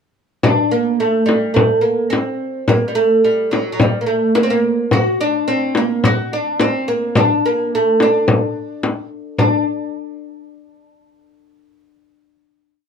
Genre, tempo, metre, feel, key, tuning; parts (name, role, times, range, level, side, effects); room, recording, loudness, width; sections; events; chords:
Persian modal ensemble; 107 BPM; 4/4; straight; D dastgah homayun; A4 = 445 Hz
oud; melody; 0.4-9.6 s; F#3 to F#4; -16 LUFS; right 1 dB; plate reverb
frame drum; percussion; 0.4-9.6 s; -17 LUFS; left 2 dB
moderate small room reverb, RT60 0.5 s; -14 LUFS; side -6 dB against mid
0.4-9.4 A section; 9.4-11.6 final note